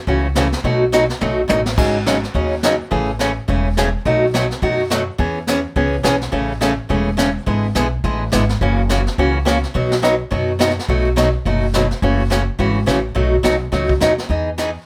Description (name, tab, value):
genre	country, western swing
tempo	211 BPM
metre	4/4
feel	swing 59% on 8ths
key	unclear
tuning	A4 = 440 Hz
part	picked old ladder-braced acoustic guitar	accompaniment	0.1-14.7 s	B2 to G#4	-20 LUFS	equal	none
part	upright bass	bass	0.1-14.8 s	E1 to F#2	-23 LUFS	equal	none
part	jazz brush drum kit	drums	0.1-14.9 s	brushed snare drum, crash cymbal, hi-hat, kick drum, snare drum, toms	-26 LUFS	equal	none
room	light reverb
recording	none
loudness	-18 LUFS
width	mono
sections	0.0-14.9 A section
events	drum fill 1.2-1.8, 14.6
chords	0.0 F#m7; 0.6 B7; 1.8 G#7sus4; 2.9 Amaj7; 4.1 B7; 5.2 E6; 6.3 Amaj7; 7.5 E7/G#; 8.6 F#7; 9.7 B; 10.9 B7; 12.0 F#m7; 13.2 B7; 14.3 Emaj7